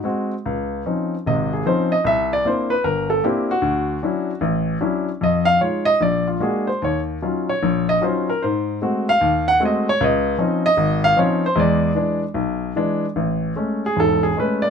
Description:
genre	solo jazz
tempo	151 BPM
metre	4/4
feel	swing 64% on 8ths, rubato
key	Db major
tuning	A4 = 440 Hz
part	warm baby grand piano	solo	0.0-14.7 s	E1 to Gb5	-17 LUFS	left 1 dB	none
room	light reverb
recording	minimal, uncompressed stereo recording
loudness	-17 LUFS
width	side -6 dB against mid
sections	0.5-13.2 A section; 13.2-14.7 A section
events	grand piano solo 0.5-14.7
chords	0.5 Dbmaj9; 2.1 C9; 3.6 Dmaj9; 5.2 Fm7; 6.0 Bb7b13; 6.8 Ebm9; 8.4 Ab7b9; 10.0 Dbmaj9; 11.6 E7; 13.2 Amaj7

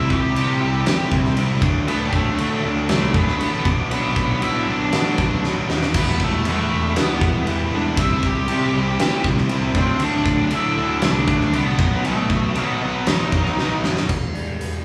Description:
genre	quiet-loud alternative rock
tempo	118 BPM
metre	4/4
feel	straight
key	E minor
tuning	A4 = 441 Hz
part	octave-fuzz lead guitar	melody	0.0-13.8 s	A3 to G5	-27 LUFS	equal	distortion
part	cranked stack guitar	riff	0.0-14.1 s	B2 to E4	-27 LUFS	equal	overdrive
part	fuzz guitar	riff	0.0-14.1 s	B2 to E4	-30 LUFS	equal	distortion
part	fuzz picked electric bass	bass	0.0-14.8 s	E1 to D3	-27 LUFS	equal	overdrive
part	big rock drum kit	drums	0.1-14.7 s	crash cymbal, hi-hat, kick drum, snare drum	-24 LUFS	equal	none
part	electric guitar through a small old amp	arpeggios	14.1-14.8 s	E2 to B3	-36 LUFS	equal	phaser
room	moderate large studio reverb, RT60 1.4 s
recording	band playing live in one room, studio reverb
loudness	-20 LUFS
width	mono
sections	0.0-14.1 A section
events	drum fill 5.4-5.9, 13.6-14.1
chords	0.0 C; 1.6 D; 3.7 Bm; 5.9 Em; 8.0 C; 9.8 D; 11.8 B; 14.1 Em

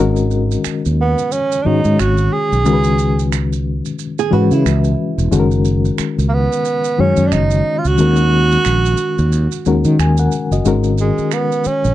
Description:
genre	R&B, neo-soul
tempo	90 BPM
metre	4/4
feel	swing 58% on 16ths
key	G# minor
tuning	A4 = 437 Hz
part	reed electric piano	accompaniment	0.0-11.9 s	D#3 to G#5	-18 LUFS	left 4 dB	overdrive, fast tremolo
part	mellow fretless electric bass	bass	0.0-11.9 s	E1 to D#3	-15 LUFS	right 1 dB	none
part	maracas and finger snaps	percussion	0.2-11.9 s	none	-29 LUFS	right 26 dB	none
part	breathy tenor saxophone	melody	1.0-11.9 s	G#3 to G#4	-17 LUFS	right 4 dB	none
part	flamenco guitar	second line	4.2-5.3 s	E4 to G#4	-22 LUFS	right 12 dB	none
room	little or no reverb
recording	dry, close 1970s-style studio recording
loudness	-13 LUFS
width	side -14 dB against mid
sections	0.0-10.6 A section; 10.6-11.9 B section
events	tenor saxophone solo 10.6-11.9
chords	0.0 G#7sus2; 2.6 C#m11; 5.3 F#69; 10.6 G#m7

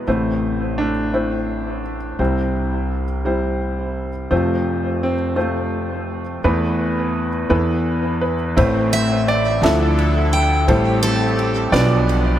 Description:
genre	acoustic folk-pop ballad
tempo	57 BPM (dotted quarters)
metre	6/8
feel	straight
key	A minor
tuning	A4 = 440 Hz
part	clear baby grand piano	melody	0.0-12.4 s	F1 to E5	-19 LUFS	equal	diffuse ambient delay
part	upright bass	bass	0.1-12.4 s	A1 to F2	-22 LUFS	equal	none
part	lush unison pad	sustained chords	8.6-12.4 s	D3 to A4	-25 LUFS	equal	chorus
part	compact cocktail drum kit	drums	8.6-12.2 s	kick drum, ride cymbal, snare drum	-26 LUFS	equal	none
part	picked steel-string acoustic guitar	arpeggios	8.9-12.0 s	A4 to G5	-23 LUFS	equal	diffuse ambient delay
room	moderate plate reverb, RT60 3.4 s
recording	dreamy mix soaked in reverb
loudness	-17 LUFS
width	side -11 dB against mid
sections	0.0-8.6 A section; 8.6-12.4 B section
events	none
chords	0.1 Am; 2.2 C; 4.3 F; 6.4 Esus4; 8.6 Am; 9.6 Dmadd9; 10.7 Am7; 11.7 Bdim

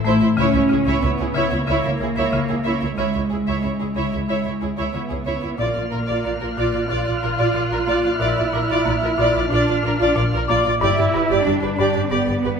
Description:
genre	cinematic, suspense film score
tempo	92 BPM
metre	4/4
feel	straight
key	unclear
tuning	A4 = 439 Hz
part	buzzing marimba with hard mallets	riff	0.0-12.6 s	G2 to C#4	-25 LUFS	left 4 dB	none
part	concert harp	texture	0.0-12.6 s	D6 to G#6	-29 LUFS	left 6 dB	none
part	muted symphonic violin section	melody	0.1-12.5 s	Bb4 to E5	-30 LUFS	left 5 dB	none
part	muted symphonic violin section	second line	0.1-12.5 s	G#4 to D5	-25 LUFS	right 1 dB	none
part	muted symphonic viola section	accompaniment	0.1-12.5 s	E4 to G4	-25 LUFS	right 3 dB	none
part	muted symphonic double bass section	bass	0.1-12.5 s	G1 to C#2	-28 LUFS	right 3 dB	none
part	muted studio cello section	bass	0.4-12.6 s	G#3 to F4	-23 LUFS	right 2 dB	none
part	muted symphonic violin section	texture	5.6-10.4 s	F6 to F#6	-30 LUFS	left 4 dB	none
room	wet recital hall reverb, RT60 1.6 s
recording	none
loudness	-18 LUFS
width	side -6 dB against mid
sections	0.0-12.6 A section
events	none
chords	0.4 C#m; 5.6 Bb; 10.8 G

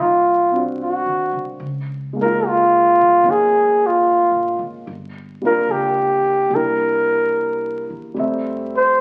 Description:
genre	jazz ballad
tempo	73 BPM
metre	4/4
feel	swing 69% on 8ths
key	unclear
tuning	A4 = 440 Hz
part	mellow flugelhorn	melody	0.0-9.0 s	F4 to C5	-17 LUFS	equal	none
part	dark baby grand piano	accompaniment	0.0-9.0 s	Gb3 to F5	-28 LUFS	equal	none
part	upright bass	bass	0.0-9.0 s	G1 to F2	-37 LUFS	equal	none
room	moderate large studio reverb, RT60 0.8 s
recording	very old 78 rpm record, vinyl crackle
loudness	-18 LUFS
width	mono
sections	0.0-9.0 A section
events	none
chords	0.0 Ab13 (rootless); 1.6 Db69; 4.9 Gm7; 6.5 C7; 8.2 Fmaj9

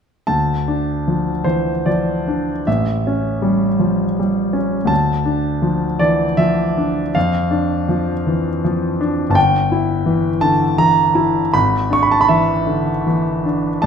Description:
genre	classical, romantic character piece for solo piano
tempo	74-85 BPM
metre	3/4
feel	rubato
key	D minor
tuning	A4 = 440 Hz
part	clear grand piano	solo	0.3-13.9 s	G1 to C#6	-15 LUFS	equal	none
room	moderate recital hall reverb, RT60 1.6 s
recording	minimal, uncompressed stereo recording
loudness	-15 LUFS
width	side -7 dB against mid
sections	0.3-13.9 A section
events	none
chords	0.3 Dm; 2.7 A7; 4.9 Dm; 7.2 Dm/F; 9.4 Edim/G; 11.5 E7/G#

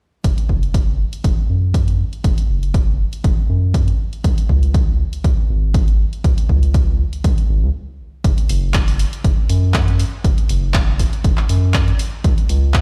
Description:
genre	deep house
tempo	120 BPM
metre	4/4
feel	swing 54% on 16ths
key	unclear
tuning	A4 = 439 Hz
part	round analog bass	bass	0.2-12.8 s	F#1 to F#2	-19 LUFS	equal	sidechain pumping
part	electronic kick drum	drums	0.2-12.8 s	none	-19 LUFS	equal	none
part	punchy analog drum machine	drums	0.2-12.8 s	handclaps, hi-hat	-29 LUFS	equal	none
room	little or no reverb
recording	played on a big sound system in a bare room, stone room reverb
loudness	-17 LUFS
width	mono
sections	0.2-8.2 A section; 8.2-12.8 B section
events	filter sweep on analog synth bass 0.2-8.2; stop 7.7-8.2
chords	none

